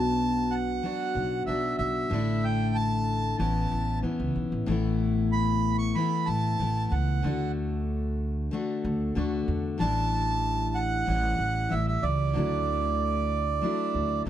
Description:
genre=folk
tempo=94 BPM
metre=4/4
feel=straight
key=unclear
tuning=A4 = 440 Hz
part: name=accordion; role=melody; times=0.0-14.2 s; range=D5 to C#6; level=-29 LUFS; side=right 4 dB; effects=none
part: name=picked steel-string acoustic guitar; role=accompaniment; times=0.0-14.3 s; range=A2 to F#4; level=-29 LUFS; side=left 4 dB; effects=none
part: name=upright bass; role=bass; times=0.0-14.3 s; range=A1 to E2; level=-29 LUFS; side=right 1 dB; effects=none
room=light reverb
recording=dark, warm production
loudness=-25 LUFS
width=side -11 dB against mid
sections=0.0-14.3 A section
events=none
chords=0.0 Bm; 2.1 Asus4; 3.4 Aadd9; 7.2 D; 9.8 A7sus4; 11.1 A7; 12.4 Dadd9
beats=0.19 0.83 1.48 | 2.12 2.76 3.40 4.04 | 4.68 5.32 5.96 6.60 | 7.24 7.88 8.52 9.16 | 9.80 10.44 11.08 11.72 | 12.36 12.99 13.63 14.27

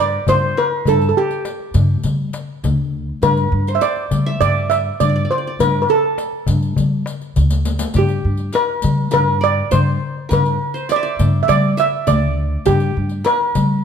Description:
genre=Arabic maqam ensemble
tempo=102 BPM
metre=4/4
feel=straight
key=G maqam rast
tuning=A4 = 440 Hz
part: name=steel pan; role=melody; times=0.0-13.8 s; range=G4 to E5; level=-18 LUFS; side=right 2 dB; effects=none
part: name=qanun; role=second line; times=0.0-13.8 s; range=G4 to E5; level=-24 LUFS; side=right 1 dB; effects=none
part: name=upright bass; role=bass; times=0.0-13.8 s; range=D2 to G3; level=-19 LUFS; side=equal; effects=none
part: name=darbuka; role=percussion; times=0.3-13.8 s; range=none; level=-20 LUFS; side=left 3 dB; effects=none
part: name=riq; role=percussion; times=0.3-13.7 s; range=none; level=-30 LUFS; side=left 4 dB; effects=none
room=light reverb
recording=close, detailed microphones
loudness=-15 LUFS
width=side -7 dB against mid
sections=0.0-13.8 A section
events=drum fill 7.4-7.9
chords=none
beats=0.27 | 0.86 1.45 2.04 2.63 | 3.23 3.82 4.41 5.00 | 5.59 6.18 6.77 7.36 | 7.95 8.54 9.13 9.72 | 10.31 10.90 11.49 12.08 | 12.67 13.26

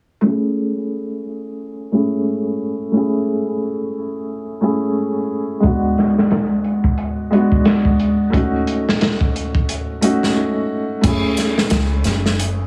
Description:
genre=trip hop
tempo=89 BPM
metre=4/4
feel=swing 58% on 16ths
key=unclear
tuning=A4 = 441 Hz
part: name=felt-muted upright piano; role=accompaniment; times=0.2-12.7 s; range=G#3 to G#4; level=-20 LUFS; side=equal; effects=tremolo, tape echo
part: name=crunchy breakbeat drum kit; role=drums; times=5.6-12.6 s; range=crash cymbal, hi-hat, kick drum, snare drum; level=-21 LUFS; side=equal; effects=none
part: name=deep dub fingered electric bass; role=bass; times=11.0-12.7 s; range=F#1 to C#2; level=-21 LUFS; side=equal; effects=none
room=moderate plate reverb, RT60 2.9 s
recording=heavily compressed radio sound, low-pass filter, small room ambience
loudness=-18 LUFS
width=mono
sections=0.2-11.0 A section; 11.0-12.7 B section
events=filter sweep 0.2-11.0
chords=0.2 Amaj7; 5.6 G#m7b5; 8.3 F#m6/A; 11.0 F#m7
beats=| 0.24 0.92 1.59 2.27 | 2.94 3.62 4.29 4.96 | 5.64 6.31 6.99 7.66 | 8.33 9.01 9.68 10.36 | 11.03 11.71 12.38

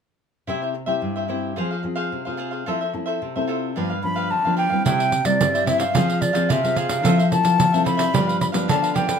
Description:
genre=samba and choro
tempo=110 BPM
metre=4/4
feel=straight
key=C major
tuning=A4 = 440 Hz
part: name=cavaquinho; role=accompaniment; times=0.5-9.2 s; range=D4 to F5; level=-27 LUFS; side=equal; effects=none
part: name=nylon-string guitar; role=accompaniment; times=0.5-9.2 s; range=G2 to A4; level=-25 LUFS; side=left 2 dB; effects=none
part: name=wooden flute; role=melody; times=4.0-9.2 s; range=D5 to B5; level=-21 LUFS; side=equal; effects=none
part: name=nylon-string guitar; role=bass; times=4.9-9.2 s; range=C3 to G3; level=-24 LUFS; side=left 1 dB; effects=none
part: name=pandeiro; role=percussion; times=4.9-9.2 s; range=none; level=-24 LUFS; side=right 4 dB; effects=none
room=light reverb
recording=minimal, uncompressed stereo recording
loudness=-19 LUFS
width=side -6 dB against mid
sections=0.5-4.9 A section; 4.9-9.2 B section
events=none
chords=0.5 C; 1.6 Fm; 2.7 Fmaj7; 3.8 G7; 4.9 C; 6.0 Fm; 7.0 Fmaj7; 8.1 G7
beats=| 0.48 1.02 1.57 2.12 | 2.67 3.21 3.76 4.31 | 4.86 5.40 5.95 6.50 | 7.05 7.59 8.14 8.69

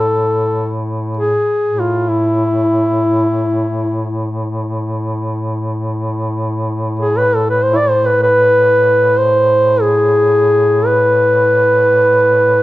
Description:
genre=caucasian folk, Caucasian lament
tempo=free time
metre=none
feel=none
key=A harmonic minor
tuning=A4 = 440 Hz
part: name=mellow duduk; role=melody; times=0.0-12.6 s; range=E4 to D5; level=-12 LUFS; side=equal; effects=none
part: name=warm duduk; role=drone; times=0.0-12.6 s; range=A2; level=-19 LUFS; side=equal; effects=none
room=light reverb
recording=close, detailed microphones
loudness=-12 LUFS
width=side -16 dB against mid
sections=0.0-12.6 A section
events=none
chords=none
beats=free time

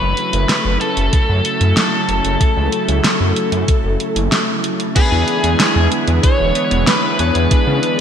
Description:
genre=synthwave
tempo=94 BPM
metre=4/4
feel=straight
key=unclear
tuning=A4 = 440 Hz
part: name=biting lead guitar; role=melody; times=0.0-8.0 s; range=G#4 to C#5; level=-20 LUFS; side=left 1 dB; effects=overdrive, ping-pong delay, shimmer reverb
part: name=lush unison pad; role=sustained chords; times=0.0-8.0 s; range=C#3 to E4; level=-21 LUFS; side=right 1 dB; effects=chorus, sidechain pumping, shimmer reverb
part: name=wide detuned saw bass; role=bass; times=0.0-7.8 s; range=E1 to C#3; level=-17 LUFS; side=equal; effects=chorus
part: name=pop drum kit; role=drums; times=0.2-8.0 s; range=crash cymbal, hi-hat, snare drum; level=-19 LUFS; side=equal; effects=gated reverb
part: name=electronic kick drum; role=drums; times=1.1-7.6 s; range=none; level=-14 LUFS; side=equal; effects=overdrive
part: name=FM electric piano with soft pad layer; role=second line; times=5.0-8.0 s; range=G#4 to C#5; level=-26 LUFS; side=right 1 dB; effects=none
part: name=chorused polysynth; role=stabs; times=5.0-8.0 s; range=B3 to C#5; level=-22 LUFS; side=left 2 dB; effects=shimmer reverb
room=moderate lush hall reverb, RT60 2.7 s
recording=bright 1980s-style digital production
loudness=-13 LUFS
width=side -8 dB against mid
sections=0.0-5.0 A section; 5.0-8.0 B section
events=none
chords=0.0 F#m7; 5.0 E7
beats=0.49 1.13 1.77 | 2.41 3.04 3.68 4.32 | 4.96 5.60 6.24 6.87 | 7.51

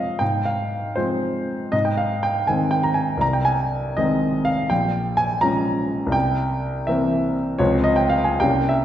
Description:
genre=classical, romantic character piece for solo piano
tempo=81 BPM (dotted quarters)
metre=6/8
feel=uneven beats, rubato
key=unclear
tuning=A4 = 441 Hz
part: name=clear grand piano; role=solo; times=0.0-8.8 s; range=Bb1 to Bb5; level=-19 LUFS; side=equal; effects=none
room=wet recital hall reverb, RT60 1.6 s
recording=heard from further back in the room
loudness=-19 LUFS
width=side -11 dB against mid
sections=0.0-8.8 A section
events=none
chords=0.2 Fm/Ab; 1.7 Ab; 3.2 Ab/C; 4.7 Bbm7; 6.1 C7; 7.6 Dbmaj7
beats=| 0.21 0.97 | 1.73 2.48 | 3.21 3.97 | 4.71 5.43 | 6.14 6.88 | 7.60 8.40

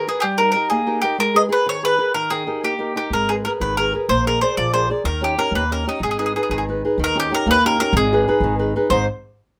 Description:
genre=italian folk, Italian serenade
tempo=125 BPM (dotted quarters)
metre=6/8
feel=rubato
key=G# harmonic minor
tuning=A4 = 440 Hz
part: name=bowl-back mandolin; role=melody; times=0.0-9.1 s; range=D#4 to D#5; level=-21 LUFS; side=equal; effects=none
part: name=flamenco guitar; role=accompaniment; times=0.0-9.1 s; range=G#2 to G5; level=-24 LUFS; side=equal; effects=none
part: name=upright bass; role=bass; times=3.1-9.1 s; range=G#1 to D#2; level=-27 LUFS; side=equal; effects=none
room=moderate small room reverb, RT60 0.5 s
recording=none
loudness=-19 LUFS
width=mono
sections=0.0-7.0 A section; 7.0-8.9 B section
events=none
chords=0.2 D#/G; 1.2 G#madd9; 2.1 D#; 3.1 G#madd9; 4.1 A#7; 5.0 D#7; 6.0 G#m; 7.0 D#7; 7.9 G#m; 8.9 G#5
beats=| 0.23 0.70 | 1.17 1.65 | 2.13 2.62 | 3.12 3.61 | 4.09 4.57 | 5.04 5.52 | 6.00 6.49 | 6.98 7.46 | 7.94 8.41 | 8.89

